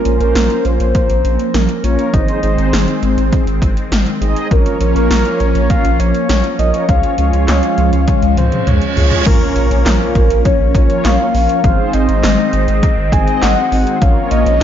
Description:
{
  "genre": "synth-pop",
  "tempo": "101 BPM",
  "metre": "4/4",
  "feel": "straight",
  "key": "Bb minor",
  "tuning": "A4 = 440 Hz",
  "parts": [
    { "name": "soft octave-layered synth lead", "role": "melody", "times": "0.0-14.6 s", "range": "Bb4 to Ab5", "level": "-18 LUFS", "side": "left 2 dB", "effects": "chorus, phaser, slapback echo, shimmer reverb" },
    { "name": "phased analog pad", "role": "sustained chords", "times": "0.0-14.6 s", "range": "Eb3 to Db4", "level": "-20 LUFS", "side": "equal", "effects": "phaser, chorus, shimmer reverb" },
    { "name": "mellow synth brass", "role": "accompaniment", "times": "0.1-14.6 s", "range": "Bb3 to Eb5", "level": "-21 LUFS", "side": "right 2 dB", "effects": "chorus, shimmer reverb" },
    { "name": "round analog bass", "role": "bass", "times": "0.1-14.6 s", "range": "Ab1 to Db2", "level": "-15 LUFS", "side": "equal", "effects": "none" },
    { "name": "80s electronic pad drums", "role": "drums", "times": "0.1-14.6 s", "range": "crash cymbal, handclaps, hi-hat, kick drum, snare drum, toms", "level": "-16 LUFS", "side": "equal", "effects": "gated reverb on snare and toms" },
    { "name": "reverse cymbal and impact", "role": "sound effects", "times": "8.4-11.6 s", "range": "none", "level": "-24 LUFS", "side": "right 2 dB", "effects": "none" }
  ],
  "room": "light reverb, digital ambience",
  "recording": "dark, warm production, nothing above 7.5 kHz",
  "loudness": "-11 LUFS",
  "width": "side -10 dB against mid",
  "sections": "0.0-9.3 A section; 9.3-14.6 B section",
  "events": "drum fill 8.1-9.3; reverse cymbal 8.4-9.3; impact 9.3-11.6",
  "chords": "0.0 Bbm; 2.1 Ab; 4.5 Bbm; 6.9 Db; 9.3 Bbm; 11.6 Ab; 14.0 Bbm"
}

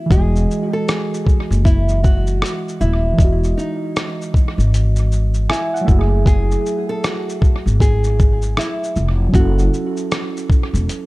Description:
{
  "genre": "lo-fi hip hop",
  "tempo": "78 BPM",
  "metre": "4/4",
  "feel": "swing 61% on 16ths",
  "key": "F# dorian",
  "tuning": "A4 = 440 Hz",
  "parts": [
    { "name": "nylon-string guitar", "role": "melody", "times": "0.0-11.1 s", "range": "D#4 to A4", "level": "-24 LUFS", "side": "equal", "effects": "tape echo" },
    { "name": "muted felt-like synth keys", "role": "accompaniment", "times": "0.0-11.1 s", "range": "E3 to G#5", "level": "-23 LUFS", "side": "right 2 dB", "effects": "chorus, tape echo" },
    { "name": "upright bass", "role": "bass", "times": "0.1-10.9 s", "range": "D#1 to G#1", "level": "-16 LUFS", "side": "equal", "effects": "none" },
    { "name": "dusty soul sampler-style drum kit", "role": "drums", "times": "0.1-11.1 s", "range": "hi-hat, kick drum, rim click, shaker", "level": "-16 LUFS", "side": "equal", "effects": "none" }
  ],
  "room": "digital ambience",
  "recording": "echo-heavy mix",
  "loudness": "-14 LUFS",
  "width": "side -20 dB against mid",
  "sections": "0.0-11.1 A section",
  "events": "none",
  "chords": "0.1 Emaj9; 5.9 F#m9; 9.3 F#m7"
}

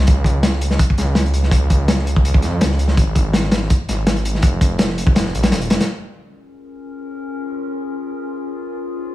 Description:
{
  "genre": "drum and bass, jungle",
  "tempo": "165 BPM",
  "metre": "4/4",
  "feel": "straight",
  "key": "Bb minor",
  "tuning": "A4 = 440 Hz",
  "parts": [
    { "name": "detuned saw bass", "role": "bass", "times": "0.0-5.8 s", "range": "Eb1 to F2", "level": "-18 LUFS", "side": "equal", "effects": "none" },
    { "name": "crunchy breakbeat drum kit", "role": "drums", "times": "0.1-5.9 s", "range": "hi-hat, kick drum, snare drum", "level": "-16 LUFS", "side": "equal", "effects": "none" },
    { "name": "warbly tape-like pad", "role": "sustained chords", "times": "6.5-9.1 s", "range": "Db4 to C5", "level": "-26 LUFS", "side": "left 4 dB", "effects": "chorus, built-in reverb, vintage 12-bit sampler grit" }
  ],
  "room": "little or no reverb",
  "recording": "studio reverb",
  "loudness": "-15 LUFS",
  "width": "side -15 dB against mid",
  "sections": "0.0-5.9 A section; 5.9-9.1 B section",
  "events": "none",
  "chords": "0.1 N.C.; 4.4 Ebsus2 (rootless); 5.9 Bbm7"
}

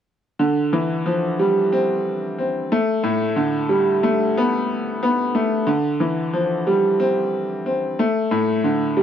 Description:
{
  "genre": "hip hop",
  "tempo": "91 BPM",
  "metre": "4/4",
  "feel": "swing 55% on 16ths",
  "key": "D minor",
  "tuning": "A4 = 440 Hz",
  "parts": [
    { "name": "clear upright piano", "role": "solo", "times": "0.4-9.0 s", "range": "A2 to C4", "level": "-18 LUFS", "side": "equal", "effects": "high-pass filter, low-pass filter" }
  ],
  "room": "light reverb",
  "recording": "none",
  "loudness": "-18 LUFS",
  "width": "side -9 dB against mid",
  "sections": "0.4-9.0 A section",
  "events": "none",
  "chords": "0.4 Dm11; 2.7 A9sus4; 5.7 Dm11; 8.0 Asus4"
}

